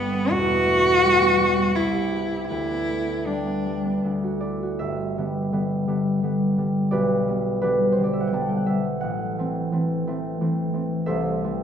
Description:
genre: classical, romantic duo for cello and harp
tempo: 77-89 BPM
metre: 3/4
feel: rubato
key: G major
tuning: A4 = 440 Hz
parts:
  - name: warm cello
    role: melody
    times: 0.0-4.0 s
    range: B3 to F#4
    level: -20 LUFS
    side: equal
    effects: none
  - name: concert harp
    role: accompaniment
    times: 0.0-11.6 s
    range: E1 to A5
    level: -22 LUFS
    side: equal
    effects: none
room: wet scoring stage reverb, RT60 1.5 s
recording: minimal, uncompressed stereo recording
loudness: -20 LUFS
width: side -8 dB against mid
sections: 0.0-4.8 A section; 4.8-11.6 B section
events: none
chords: 0.3 Em; 1.8 Cmaj7; 2.5 G/D; 4.0 D; 4.8 G; 6.9 G/B; 9.0 Am; 11.1 Am/C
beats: | 0.33 1.04 1.76 | 2.50 3.27 4.03 | 4.79 5.51 6.22 | 6.93 7.63 8.32 | 9.02 9.71 10.39 | 11.07

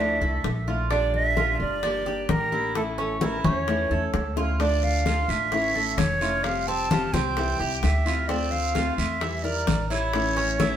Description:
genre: latin, Cuban son and guajira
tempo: 130 BPM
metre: 4/4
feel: straight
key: D minor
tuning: A4 = 439 Hz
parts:
  - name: silver concert flute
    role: melody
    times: 0.0-10.8 s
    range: A4 to A5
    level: -27 LUFS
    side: right 2 dB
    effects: none
  - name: nylon-string guitar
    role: accompaniment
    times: 0.0-10.8 s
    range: C3 to G4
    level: -30 LUFS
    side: left 4 dB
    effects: none
  - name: Cuban tres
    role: arpeggios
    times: 0.0-10.8 s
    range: C4 to E5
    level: -30 LUFS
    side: right 4 dB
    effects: none
  - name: upright bass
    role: bass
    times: 0.0-10.8 s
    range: F1 to E2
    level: -28 LUFS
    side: equal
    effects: none
  - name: bongos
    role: percussion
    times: 0.2-10.8 s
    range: none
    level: -33 LUFS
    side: left 5 dB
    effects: none
  - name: congas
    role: percussion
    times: 0.2-10.8 s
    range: none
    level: -29 LUFS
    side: left 2 dB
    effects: none
  - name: guiro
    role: percussion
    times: 4.6-10.8 s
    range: none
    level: -36 LUFS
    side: right 4 dB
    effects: none
room: wet stone room reverb, RT60 1.0 s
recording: band playing live in one room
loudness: -22 LUFS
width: side -10 dB against mid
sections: 0.0-10.8 A section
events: drum fill 4.4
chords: 0.0 Dmadd9; 0.9 Bb6; 1.8 Gm7; 2.8 A; 4.6 Dm; 5.5 A; 6.4 Fadd9; 7.4 C; 8.3 Dm7; 9.2 Edim; 10.1 A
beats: 0.44 | 0.91 1.37 1.83 2.29 | 2.75 3.21 3.68 4.14 | 4.60 5.06 5.52 5.98 | 6.44 6.91 7.37 7.83 | 8.29 8.75 9.21 9.67 | 10.14 10.60

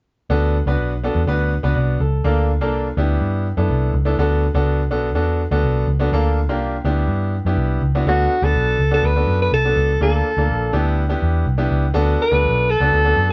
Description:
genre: uptempo 1960s-style soul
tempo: 124 BPM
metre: 4/4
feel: straight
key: D major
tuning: A4 = 437 Hz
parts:
  - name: clear baby grand piano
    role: accompaniment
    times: 0.3-13.3 s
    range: Bb3 to D5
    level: -24 LUFS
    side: equal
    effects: none
  - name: vintage muted picked electric bass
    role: bass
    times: 0.3-13.3 s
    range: Bb1 to G2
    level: -21 LUFS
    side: equal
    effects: none
  - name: breathy alto saxophone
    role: melody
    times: 8.1-13.3 s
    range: F#4 to B4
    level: -20 LUFS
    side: equal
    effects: none
room: light reverb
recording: band playing live in one room, nothing above 7.6 kHz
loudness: -19 LUFS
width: mono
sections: 0.3-8.1 A section; 8.1-13.3 B section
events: none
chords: 0.3 D6; 2.2 Bbmaj7/D; 3.0 G6/D; 4.2 D6; 6.1 Bbmaj7/D; 6.9 G6/D; 8.1 D6; 10.0 Bbmaj7/D; 10.7 G6/D; 12.0 D6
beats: | 0.30 0.78 1.27 1.75 | 2.24 2.73 3.21 3.70 | 4.18 4.67 5.15 5.64 | 6.12 6.61 7.09 7.58 | 8.07 8.55 9.04 9.52 | 10.01 10.49 10.98 11.47 | 11.95 12.44 12.92

